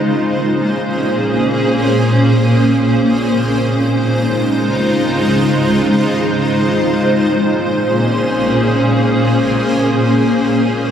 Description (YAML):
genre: hip hop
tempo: free time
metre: none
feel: none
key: Bb minor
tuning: A4 = 439 Hz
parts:
  - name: granular cloud pad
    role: solo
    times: 0.0-10.9 s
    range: Bb2 to C5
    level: -12 LUFS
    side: equal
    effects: built-in reverb, tape echo
room: moderate huge ambient reverb, RT60 7.0 s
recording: none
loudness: -12 LUFS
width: side -8 dB against mid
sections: 0.0-10.9 A section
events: none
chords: 0.0 Bbm7; 3.3 Dbmaj7; 6.8 Bbm7; 10.3 Dbmaj7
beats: free time